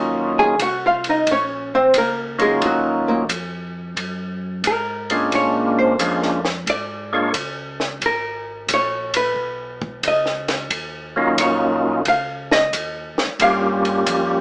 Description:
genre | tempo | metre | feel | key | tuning
soul jazz organ trio | 89 BPM | 4/4 | swing 67% on 8ths | Eb dorian | A4 = 440 Hz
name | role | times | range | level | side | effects
percussive tonewheel organ | melody | 0.0-14.4 s | F#3 to C#5 | -18 LUFS | equal | slow rotary speaker, overdrive
mellow tonewheel organ | bass | 0.0-14.4 s | Ab1 to Bb2 | -32 LUFS | equal | slow rotary speaker
archtop guitar, miked and amplified | accompaniment | 0.4-14.4 s | Bb2 to Ab5 | -19 LUFS | equal | none
compact cocktail drum kit | drums | 0.6-14.3 s | hi-hat, kick drum, ride cymbal, snare drum | -25 LUFS | equal | none
room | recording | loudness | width
wet studio reverb, RT60 0.5 s | band playing live in one room, small speaker sound | -17 LUFS | side -28 dB against mid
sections
0.0-14.4 A section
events
hollow-body jazz guitar solo 0.0-14.4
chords
0.0 Ebm9; 5.3 Bb7#9; 8.0 Abmadd9; 10.7 Ebm9; 13.4 Gm7b5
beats
0.59 1.27 1.95 | 2.62 3.30 3.97 4.65 | 5.32 6.00 6.67 7.34 | 8.02 8.69 9.37 10.04 | 10.71 11.39 12.06 12.73 | 13.40 14.07

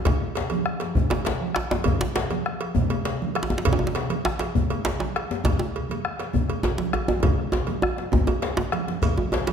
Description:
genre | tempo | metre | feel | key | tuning
west african traditional, West African drum ensemble | 134 BPM (dotted quarters) | 12/8 | straight | none | none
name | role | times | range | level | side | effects
bombo | percussion | 0.1-9.2 s | none | -27 LUFS | left 2 dB | none
congas | percussion | 0.1-9.5 s | none | -29 LUFS | right 4 dB | none
cowbell | percussion | 0.1-9.5 s | none | -32 LUFS | right 5 dB | none
djembe | percussion | 0.1-9.5 s | none | -29 LUFS | left 5 dB | none
djembe | percussion | 0.1-9.5 s | none | -27 LUFS | right 2 dB | none
shekere | percussion | 9.0-9.2 s | none | -36 LUFS | right 2 dB | none
room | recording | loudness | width
wet recital hall reverb, RT60 1.4 s | none | -22 LUFS | side -7 dB against mid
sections
0.0-9.0 A section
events
drum fill 7.2-9.0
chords
none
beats
| 0.06 0.51 0.96 1.41 | 1.86 2.31 2.76 3.21 | 3.66 4.11 4.55 5.00 | 5.45 5.90 6.35 6.79 | 7.24 7.69 8.14 8.58 | 9.03 9.48

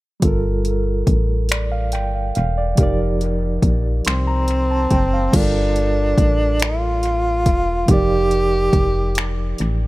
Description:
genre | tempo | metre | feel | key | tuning
slow six-eight R&B | 47 BPM (dotted quarters) | 6/8 | straight | G minor | A4 = 440 Hz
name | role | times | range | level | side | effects
bright reed electric piano | accompaniment | 0.2-9.9 s | F3 to C6 | -24 LUFS | right 2 dB | fast tremolo, dub echo
solid FM bass | bass | 0.2-9.9 s | E1 to C2 | -20 LUFS | equal | none
smooth R&B drum kit | drums | 0.2-9.8 s | crash cymbal, finger snaps, hi-hat, kick drum | -19 LUFS | equal | overdrive
breathy tenor saxophone | melody | 4.1-9.6 s | C4 to G4 | -20 LUFS | right 1 dB | dub echo
room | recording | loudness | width
digital ambience | echo-heavy mix | -16 LUFS | side -18 dB against mid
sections
0.2-5.3 A section; 5.3-9.9 B section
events
none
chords
0.2 Gm9; 2.8 F13sus4; 5.3 Gm9; 7.9 F13sus4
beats
| 0.23 1.50 | 2.78 4.05 | 5.33 6.61 | 7.88 9.16

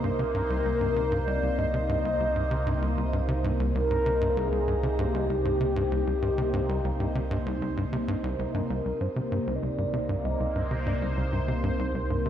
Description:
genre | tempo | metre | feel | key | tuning
ambient, sequencer-driven space music | 97 BPM | 4/4 | straight | C minor | A4 = 440 Hz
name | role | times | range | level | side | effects
mellow horn-like synth lead | melody | 0.0-12.3 s | G4 to Eb5 | -30 LUFS | left 1 dB | chorus, shimmer reverb, analog delay
sweeping resonant pad | sustained chords | 0.0-12.3 s | C3 to C5 | -32 LUFS | equal | chorus, shimmer reverb
tight sequencer bass | riff | 0.0-12.3 s | C2 to C3 | -31 LUFS | equal | analog delay
warm sub bass | bass | 0.0-12.3 s | C2 | -31 LUFS | equal | tube saturation
bubbling stepped-filter texture | texture | 0.0-8.7 s | C5 | -40 LUFS | right 7 dB | chorus, built-in reverb, shimmer reverb
room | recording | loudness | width
wet spring reverb, RT60 2.6 s | echo-heavy mix | -25 LUFS | side -10 dB against mid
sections
0.0-8.7 A section; 8.7-12.3 B section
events
none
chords
0.0 Cm7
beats
0.04 0.66 | 1.27 1.89 2.51 3.13 | 3.75 4.37 4.99 5.61 | 6.22 6.84 7.46 8.08 | 8.70 9.32 9.94 10.55 | 11.17 11.79

